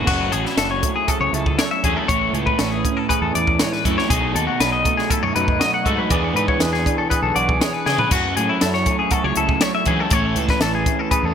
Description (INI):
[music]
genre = math rock and midwest emo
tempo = 120 BPM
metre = 4/4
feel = straight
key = unclear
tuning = A4 = 440 Hz
[part]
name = electric guitar through a small old amp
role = accompaniment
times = 0.0-11.3 s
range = F#2 to A4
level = -25 LUFS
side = right 6 dB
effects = analog chorus
[part]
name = clean electric guitar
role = arpeggios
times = 0.0-11.3 s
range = E4 to F#5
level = -21 LUFS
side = left 5 dB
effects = wide subtle chorus, digital delay
[part]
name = overdriven semi-hollow guitar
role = riff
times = 0.0-11.3 s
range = A2 to G#4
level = -26 LUFS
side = right 1 dB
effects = wide subtle chorus
[part]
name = fuzz fingered electric bass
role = bass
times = 0.0-11.3 s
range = F#1 to E3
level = -26 LUFS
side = right 1 dB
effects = overdrive
[part]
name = compact cocktail drum kit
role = drums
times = 0.1-11.2 s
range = crash cymbal, hi-hat, kick drum, snare drum, splash cymbal, toms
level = -22 LUFS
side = equal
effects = none
[sound]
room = moderate plate reverb, RT60 1.7 s, studio reverb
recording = bright 1980s-style digital production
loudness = -17 LUFS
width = side -8 dB against mid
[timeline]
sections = 0.1-11.3 A section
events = drum fill 7.9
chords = 0.1 F#m7; 2.1 Amaj7; 4.1 B7; 6.1 E7; 8.1 F#m7; 10.1 Amaj7